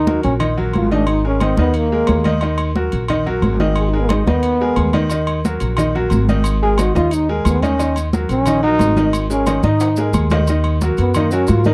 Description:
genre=latin, salsa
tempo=179 BPM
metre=4/4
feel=straight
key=Eb minor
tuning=A4 = 439 Hz
part: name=warm trombone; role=melody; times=0.0-11.7 s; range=Ab3 to Bb4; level=-20 LUFS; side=equal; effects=none
part: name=upright bass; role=bass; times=0.0-11.7 s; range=Ab1 to Ab2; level=-21 LUFS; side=equal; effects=none
part: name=bright upright piano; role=accompaniment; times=0.1-11.7 s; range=Eb3 to Eb5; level=-23 LUFS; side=equal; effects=none
part: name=congas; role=percussion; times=0.1-11.7 s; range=none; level=-24 LUFS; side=equal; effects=none
part: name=agogo bells and timbales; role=percussion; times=0.2-11.7 s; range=none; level=-30 LUFS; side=equal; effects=none
part: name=maracas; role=percussion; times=5.1-11.7 s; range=none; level=-38 LUFS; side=equal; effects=none
room=little or no reverb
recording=dry, close 1970s-style studio recording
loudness=-17 LUFS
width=mono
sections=0.0-11.7 A section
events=trombone solo 0.0-11.7; drum fill 9.8-10.5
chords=0.0 Ebm; 1.1 Absus2; 2.4 Ebm; 3.8 Abmadd9; 5.1 Ebm; 6.5 Absus2; 7.8 Ebm7; 9.1 Absus2; 10.5 Ebm

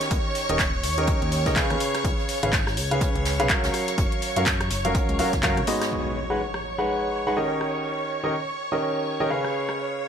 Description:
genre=piano house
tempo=124 BPM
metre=4/4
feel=swing 59% on 16ths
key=G# dorian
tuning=A4 = 439 Hz
part: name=string machine, violins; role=sustained chords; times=0.0-10.1 s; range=C#5 to C#6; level=-29 LUFS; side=right 2 dB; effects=ensemble chorus, sidechain pumping
part: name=warm concert grand piano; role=riff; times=0.0-10.1 s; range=G#2 to F#5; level=-26 LUFS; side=equal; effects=sidechain pumping, tape echo
part: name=house drum kit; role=drums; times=0.0-9.8 s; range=handclaps, hi-hat, rim click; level=-28 LUFS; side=left 1 dB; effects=none
part: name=vintage brush drum kit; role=drums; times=0.0-5.9 s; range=hi-hat, snare drum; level=-35 LUFS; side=right 2 dB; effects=sidechain pumping on hats, high-pass filter on hats, high-pass filter on snare, high-pass filter on room
part: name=fat analog bass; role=bass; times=0.1-5.6 s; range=D#1 to F#2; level=-28 LUFS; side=equal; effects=sidechain pumping
part: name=electronic kick drum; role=drums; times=0.1-5.5 s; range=none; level=-26 LUFS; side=equal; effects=none
part: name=impact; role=sound effects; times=5.9-7.9 s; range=none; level=-36 LUFS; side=left 1 dB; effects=none
room=light reverb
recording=none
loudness=-22 LUFS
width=side -8 dB against mid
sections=0.0-5.9 A section; 5.9-10.1 B section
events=impact 5.9-7.9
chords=0.0 D#7; 1.8 C#7; 3.7 F#maj7; 5.9 G#m7; 7.6 D#7; 9.5 C#7

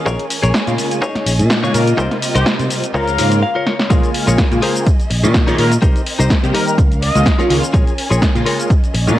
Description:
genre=filtered disco house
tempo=125 BPM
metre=4/4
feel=swing 54% on 16ths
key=Bb dorian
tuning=A4 = 441 Hz
part: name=dark studio violin section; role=sustained chords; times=0.0-9.2 s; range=C4 to Ab5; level=-27 LUFS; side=right 1 dB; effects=sidechain pumping, low-pass filter, cassette tape
part: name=direct-recorded clean electric guitar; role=riff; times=0.1-9.0 s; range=Eb4 to F5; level=-22 LUFS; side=left 3 dB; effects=sidechain pumping, low-pass filter, cassette tape
part: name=fingered electric bass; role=bass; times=0.1-9.2 s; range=Bb1 to C3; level=-16 LUFS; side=equal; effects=sidechain pumping, low-pass filter
part: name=electronic kick drum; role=drums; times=0.1-8.8 s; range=none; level=-14 LUFS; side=equal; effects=overdrive, high-pass filter on kick, cassette tape
part: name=punchy analog drum machine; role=drums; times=0.1-9.2 s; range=hi-hat, shaker, snare drum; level=-20 LUFS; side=equal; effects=overdrive, sidechain pumping on perc, cassette tape, sidechain pumping on hats
part: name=funky polysynth comp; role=accompaniment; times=0.7-9.2 s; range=C3 to G4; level=-20 LUFS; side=equal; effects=chorus, phaser, sidechain pumping, low-pass filter, cassette tape
part: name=mellow trumpet section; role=melody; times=1.7-7.4 s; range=G4 to Eb5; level=-23 LUFS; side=left 2 dB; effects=vintage 12-bit sampler grit, sidechain pumping, low-pass filter, cassette tape, analog delay
room=light reverb, digital ambience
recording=home recording on cassette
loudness=-12 LUFS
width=side -14 dB against mid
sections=0.0-3.9 A section; 3.9-9.2 B section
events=build-up 0.0-3.9; clean electric guitar fill 3.2-3.9; drum fill 3.7; drop 3.9-9.2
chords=0.1 Bbm7; 1.0 Eb7sus4/Bb; 2.0 Cm7; 2.9 Db6; 3.9 Bbm7; 4.9 Eb7sus4/Bb; 5.8 Cm7; 6.8 Db6; 7.7 Bbm7

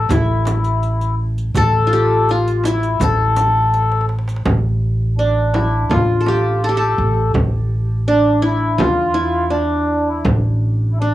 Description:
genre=Arabic maqam ensemble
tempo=83 BPM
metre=4/4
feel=straight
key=A maqam hijaz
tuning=A4 = 440 Hz
part: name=qanun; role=melody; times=0.0-11.1 s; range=D4 to A4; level=-20 LUFS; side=equal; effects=cassette tape, analog delay
part: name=mellow accordion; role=second line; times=0.0-11.1 s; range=D4 to A4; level=-19 LUFS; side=left 2 dB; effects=cassette tape
part: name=upright bass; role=bass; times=0.0-11.1 s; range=A1 to E2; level=-18 LUFS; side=equal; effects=none
part: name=darbuka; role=percussion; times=0.1-10.4 s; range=none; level=-28 LUFS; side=right 2 dB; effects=none
part: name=frame drum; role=percussion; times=0.1-10.4 s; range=none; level=-21 LUFS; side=right 1 dB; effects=none
part: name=riq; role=percussion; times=0.1-4.4 s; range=none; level=-33 LUFS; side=right 5 dB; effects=none
room=light reverb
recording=home recording on cassette, small room ambience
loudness=-14 LUFS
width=side -14 dB against mid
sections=0.0-4.5 A section; 4.5-11.1 B section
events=drum fill 3.7-4.5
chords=none

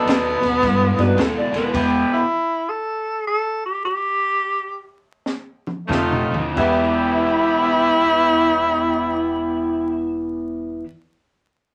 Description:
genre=electric blues shuffle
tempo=86-108 BPM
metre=4/4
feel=swing 63% on 8ths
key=E minor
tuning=A4 = 440 Hz
part: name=breathy tenor saxophone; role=melody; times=0.0-10.1 s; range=B3 to A4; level=-22 LUFS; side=equal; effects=none
part: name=raw garage guitar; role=riff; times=0.0-2.2, 5.9-10.9 s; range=E2 to G4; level=-26 LUFS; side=equal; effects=overdrive
part: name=clear horn section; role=stabs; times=0.0-2.2, 5.9-10.1 s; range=A3 to A4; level=-26 LUFS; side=equal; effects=none
part: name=upright bass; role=bass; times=0.0-2.0, 5.9-10.8 s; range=E1 to G2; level=-29 LUFS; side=equal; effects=none
part: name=compact cocktail drum kit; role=drums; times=0.1-1.9, 5.3-6.8 s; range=crash cymbal, kick drum, ride cymbal, snare drum, toms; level=-28 LUFS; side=equal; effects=none
part: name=electric slide guitar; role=second line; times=1.0-1.7, 6.6-10.1 s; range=A4 to E5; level=-26 LUFS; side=equal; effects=none
part: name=warm grand piano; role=accompaniment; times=1.0-1.2, 6.5-10.9 s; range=E2 to B4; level=-29 LUFS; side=equal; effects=none
room=moderate studio ambience, RT60 0.5 s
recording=vinyl crackle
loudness=-20 LUFS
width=mono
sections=0.0-6.6 A section; 6.6-9.3 B section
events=slowing down 1.7-6.6; stop 1.7-5.9; drum fill 5.2-6.6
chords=0.0 B7#9; 1.7 Em; 5.9 F7; 6.6 Em

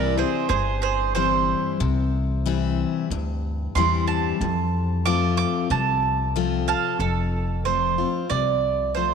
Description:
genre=honky-tonk and classic country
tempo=92 BPM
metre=4/4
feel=straight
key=F major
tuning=A4 = 440 Hz
part: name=mandolin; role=melody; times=0.0-9.1 s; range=Ab4 to D6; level=-24 LUFS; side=right 9 dB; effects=none
part: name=picked steel-string acoustic guitar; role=accompaniment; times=0.0-9.1 s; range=F2 to F4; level=-26 LUFS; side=left 10 dB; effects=none
part: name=upright bass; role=bass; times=0.0-9.1 s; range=F1 to F2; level=-25 LUFS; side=equal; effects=none
room=moderate plate reverb, RT60 2.7 s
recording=1960s-style stereo with parts hard left and right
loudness=-20 LUFS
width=side -6 dB against mid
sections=0.0-7.0 A section; 7.0-9.1 B section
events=mandolin solo 0.0-7.0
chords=0.0 C; 4.4 F

